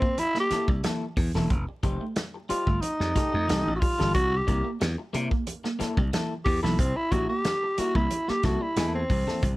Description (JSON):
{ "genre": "funk", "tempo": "91 BPM", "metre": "4/4", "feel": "straight", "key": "C mixolydian", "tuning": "A4 = 440 Hz", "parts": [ { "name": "growling tenor saxophone", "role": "melody", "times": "0.0-9.6 s", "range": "C4 to G4", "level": "-27 LUFS", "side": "equal", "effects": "none" }, { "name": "electric guitar at the edge of break-up", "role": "accompaniment", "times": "0.0-9.4 s", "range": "Bb3 to C5", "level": "-34 LUFS", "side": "left 4 dB", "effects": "plate reverb" }, { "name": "electric guitar at the edge of break-up", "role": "riff", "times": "0.0-9.4 s", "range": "E3 to Bb3", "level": "-36 LUFS", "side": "right 3 dB", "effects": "spring reverb" }, { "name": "warm soul drum kit", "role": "drums", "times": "0.0-9.6 s", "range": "hi-hat, kick drum, snare drum", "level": "-28 LUFS", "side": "equal", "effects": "none" }, { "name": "congas", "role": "percussion", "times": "0.2-9.6 s", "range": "none", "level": "-35 LUFS", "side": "right 3 dB", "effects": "none" }, { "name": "slap bass", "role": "bass", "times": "0.5-9.6 s", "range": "E1 to C3", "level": "-28 LUFS", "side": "equal", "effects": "none" } ], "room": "little or no reverb", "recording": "vinyl crackle", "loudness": "-24 LUFS", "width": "side -19 dB against mid", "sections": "0.0-9.6 A section", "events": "tenor saxophone solo 0.0-9.6", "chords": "0.0 C6 (rootless); 1.5 F9; 4.1 C6" }